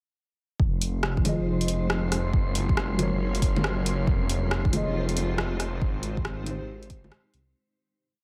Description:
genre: future garage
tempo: 138 BPM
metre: 4/4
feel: swing 65% on 16ths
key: unclear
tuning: A4 = 441 Hz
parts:
  - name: granular cloud pad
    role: sustained chords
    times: 1.4-7.5 s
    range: Gb3 to Db5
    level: -36 LUFS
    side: equal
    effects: built-in reverb, sidechain pumping
  - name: swelling detuned saw bass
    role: bass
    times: 0.6-7.5 s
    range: F1 to C2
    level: -31 LUFS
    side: equal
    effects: sidechain pumping
  - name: electronic kick drum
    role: drums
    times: 0.6-7.0 s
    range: none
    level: -28 LUFS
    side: equal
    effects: none
  - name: wind-like tuned noise texture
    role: texture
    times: 1.0-7.6 s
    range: C6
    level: -43 LUFS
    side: equal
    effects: built-in reverb
  - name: deep house drum kit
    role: drums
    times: 0.8-7.4 s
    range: bongos, hi-hat, rim click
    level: -32 LUFS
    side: equal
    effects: none
  - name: muted felt-like synth keys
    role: accompaniment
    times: 1.2-7.6 s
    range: F3 to Eb5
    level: -35 LUFS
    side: equal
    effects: chorus, sidechain pumping, low-pass filter, tape echo
room: light reverb, digital ambience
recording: none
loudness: -26 LUFS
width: mono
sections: 0.6-7.6 groove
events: filter sweep on synth keys 0.6-7.6; fade-out 5.2-7.6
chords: 0.6 Fm7; 2.3 Gb; 4.1 Fm7; 5.8 Abmaj7

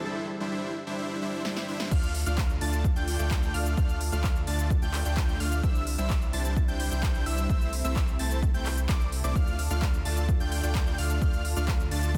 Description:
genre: EDM, festival progressive house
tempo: 129 BPM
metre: 4/4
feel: straight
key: D minor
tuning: A4 = 440 Hz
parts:
  - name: lush unison pad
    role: sustained chords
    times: 0.0-12.2 s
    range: C3 to A4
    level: -42 LUFS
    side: equal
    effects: chorus, phaser, sidechain pumping
  - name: unison lead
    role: arpeggios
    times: 0.0-12.1 s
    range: D6 to A6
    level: -40 LUFS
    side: equal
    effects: cassette tape, sidechain pumping, digital delay
  - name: supersaw chords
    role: riff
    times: 0.0-12.1 s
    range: G3 to A5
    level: -36 LUFS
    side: equal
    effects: sidechain pumping, digital delay
  - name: big-room dance drum kit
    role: drums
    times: 1.4-12.2 s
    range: crash cymbal, handclaps, hi-hat, shaker, snare drum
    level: -39 LUFS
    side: equal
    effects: none
  - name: saturated sub bass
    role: bass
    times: 1.9-12.2 s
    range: C2 to D2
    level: -32 LUFS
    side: equal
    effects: sidechain pumping
  - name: electronic kick drum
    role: drums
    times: 1.9-12.2 s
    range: none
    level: -29 LUFS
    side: equal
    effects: none
room: light reverb, digital ambience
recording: dense, heavily limited modern master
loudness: -28 LUFS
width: mono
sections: 0.0-1.9 A section; 1.9-12.2 B section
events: build-up 0.0-1.9; break 0.1-1.9; drum fill 1.4-1.9; drop 1.9-12.2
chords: 0.1 Cadd9/G; 1.9 Dm; 5.6 Cadd9; 9.4 Dm

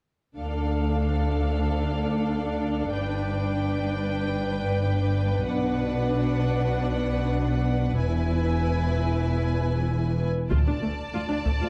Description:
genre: cinematic, epic orchestral film score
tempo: free time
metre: none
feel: none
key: D dorian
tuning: A4 = 442 Hz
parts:
  - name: warm studio violin section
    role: melody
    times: 0.4-11.7 s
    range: F5 to A5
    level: -38 LUFS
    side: equal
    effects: none
  - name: warm symphonic violin section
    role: second line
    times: 0.4-11.7 s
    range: A4 to D5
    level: -36 LUFS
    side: equal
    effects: none
  - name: warm symphonic viola section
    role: accompaniment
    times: 0.4-11.7 s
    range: A3 to F4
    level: -33 LUFS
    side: equal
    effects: none
  - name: dark symphonic double bass section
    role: bass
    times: 0.4-10.7 s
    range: E1 to D2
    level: -30 LUFS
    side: equal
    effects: none
  - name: rich symphonic cello section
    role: bass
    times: 0.4-11.7 s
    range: D2 to B2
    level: -31 LUFS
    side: equal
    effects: none
  - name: solo taiko drums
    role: drums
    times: 10.5-11.7 s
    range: none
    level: -28 LUFS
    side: equal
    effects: none
room: moderate concert hall reverb, RT60 2.1 s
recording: dark, warm production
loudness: -26 LUFS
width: mono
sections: 0.4-10.5 A section; 10.5-11.7 B section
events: build-up 10.5-11.7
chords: 0.4 Dm; 2.9 G; 5.4 Bm; 8.0 E; 10.5 D5

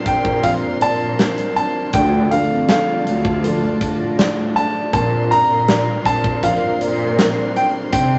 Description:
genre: pop ballad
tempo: 80 BPM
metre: 4/4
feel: straight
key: Bb major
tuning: A4 = 439 Hz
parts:
  - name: clear concert grand piano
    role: melody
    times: 0.0-8.2 s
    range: F5 to Bb5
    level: -22 LUFS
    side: equal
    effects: none
  - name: felt-muted upright piano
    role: accompaniment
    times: 0.0-8.2 s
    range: D3 to D5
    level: -28 LUFS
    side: equal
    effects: none
  - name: dark studio string section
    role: sustained chords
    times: 0.0-8.2 s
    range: C4 to C6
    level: -31 LUFS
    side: equal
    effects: none
  - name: fingerpicked steel-string acoustic guitar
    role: arpeggios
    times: 0.0-8.2 s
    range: Bb2 to G4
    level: -26 LUFS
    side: equal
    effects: none
  - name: dark symphonic cello section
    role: bass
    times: 0.0-8.2 s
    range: D2 to C3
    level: -25 LUFS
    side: equal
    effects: none
  - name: huge arena drum kit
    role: drums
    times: 0.1-8.1 s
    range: hi-hat, kick drum, snare drum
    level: -24 LUFS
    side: equal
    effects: none
room: moderate studio ambience, RT60 0.5 s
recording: vinyl crackle, nothing above 8.0 kHz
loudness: -18 LUFS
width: mono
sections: 0.0-8.2 A section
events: none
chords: 0.0 Bbadd9; 1.9 Dm; 4.9 Bbadd9

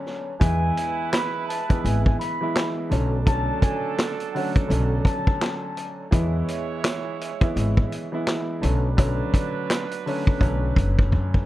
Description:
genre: hip hop, boom-bap hip-hop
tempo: 84 BPM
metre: 4/4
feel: swing 61% on 16ths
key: B dorian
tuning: A4 = 440 Hz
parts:
  - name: warm grand piano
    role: accompaniment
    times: 0.0-11.5 s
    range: D3 to E4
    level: -28 LUFS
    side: equal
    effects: high-pass filter, low-pass filter
  - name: vintage drum kit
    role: drums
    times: 0.1-11.5 s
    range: handclaps, hi-hat, kick drum, snare drum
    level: -22 LUFS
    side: equal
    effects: none
  - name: trumpet with bucket mute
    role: melody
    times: 0.4-5.6 s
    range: F#5 to B5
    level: -29 LUFS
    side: left 1 dB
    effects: high-pass filter, low-pass filter, digital delay
  - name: clear horn section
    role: stabs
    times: 0.4-11.4 s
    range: F#3 to C#5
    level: -33 LUFS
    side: right 9 dB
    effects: high-pass filter, low-pass filter, digital delay
  - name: upright bass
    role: bass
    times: 0.4-11.4 s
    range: F#1 to F#2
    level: -23 LUFS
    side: equal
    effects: none
room: little or no reverb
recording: none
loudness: -21 LUFS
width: side -15 dB against mid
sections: 0.0-11.5 A section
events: break 0.0-0.4; drum fill 11.1-11.5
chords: 0.4 E; 2.9 Bm7; 6.1 E; 8.6 Bm7

